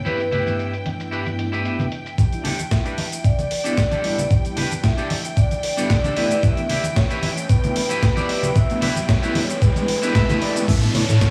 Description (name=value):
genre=nu-disco, nu disco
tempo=113 BPM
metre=4/4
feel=swing 54% on 16ths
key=A mixolydian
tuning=A4 = 440 Hz
part: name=soft octave-layered synth lead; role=melody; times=0.0-11.3 s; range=B4 to G5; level=-29 LUFS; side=equal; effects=chorus, phaser, dub echo
part: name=mellow synth brass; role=accompaniment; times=0.0-11.0 s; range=G2 to E4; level=-30 LUFS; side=equal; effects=chorus, sidechain pumping
part: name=bright symphonic string section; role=sustained chords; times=0.0-11.3 s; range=G5 to A5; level=-37 LUFS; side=equal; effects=sidechain pumping
part: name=electric guitar at the edge of break-up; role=riff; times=0.0-10.6 s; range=D4 to E5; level=-30 LUFS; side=equal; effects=analog chorus, low-pass filter, dub echo
part: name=dusty soul sampler-style drum kit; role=drums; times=0.1-11.3 s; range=hi-hat, shaker, snare drum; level=-30 LUFS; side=equal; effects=overdrive, low-pass filter on hats, low-pass filter on perc, low-pass filter on snare
part: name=congas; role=percussion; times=0.1-11.2 s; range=none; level=-30 LUFS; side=equal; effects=none
part: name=electronic kick drum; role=drums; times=2.2-11.3 s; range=none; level=-20 LUFS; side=equal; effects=overdrive
part: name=riser and downlifter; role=sound effects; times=5.1-11.3 s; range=none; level=-33 LUFS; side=equal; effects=none
part: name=chorused synth bass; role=bass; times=10.7-11.3 s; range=A1 to A2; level=-21 LUFS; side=equal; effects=none
room=light reverb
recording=studio reverb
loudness=-20 LUFS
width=mono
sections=0.0-2.2 A section; 2.2-10.7 B section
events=build-up 2.2-10.7; riser 5.1-10.7; clean electric guitar fill 9.9-10.7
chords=0.0 A7sus4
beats=| 0.06 0.59 1.12 1.65 | 2.19 2.72 3.25 3.78 | 4.31 4.84 5.37 5.90 | 6.43 6.96 7.50 8.03 | 8.56 9.09 9.62 10.15 | 10.68 11.21